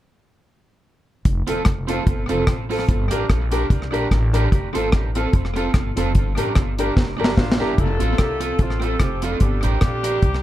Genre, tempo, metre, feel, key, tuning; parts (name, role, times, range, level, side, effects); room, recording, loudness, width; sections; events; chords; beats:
ska; 147 BPM; 4/4; swing 55% on 8ths; F major; A4 = 439 Hz
upright bass; bass; 1.3-10.4 s; E1 to C2; -23 LUFS; equal
deep reggae drum kit; drums; 1.3-10.4 s; hi-hat, kick drum, rim click, snare drum; -20 LUFS; equal; tape echo
electric guitar at the edge of break-up; accompaniment; 1.5-10.2 s; C4 to Bb4; -26 LUFS; right 5 dB; spring reverb, tape echo
tack piano; stabs; 1.5-7.7 s; C4 to Bb4; -27 LUFS; left 3 dB; tape echo
mellow horn section; melody; 7.4-10.4 s; C4 to A4; -25 LUFS; left 1 dB; tape echo
light reverb; -18 LUFS; side -14 dB against mid
1.3-7.8 A section; 7.8-10.4 B section
drum fill 7.0-7.8
1.3 F; 2.9 Gm; 4.5 F; 6.2 Gm; 7.8 F; 9.4 Gm
| 1.25 1.66 2.07 2.48 | 2.88 3.29 3.70 4.11 | 4.52 4.92 5.33 5.74 | 6.15 6.56 6.97 7.37 | 7.78 8.19 8.60 9.01 | 9.42 9.82 10.23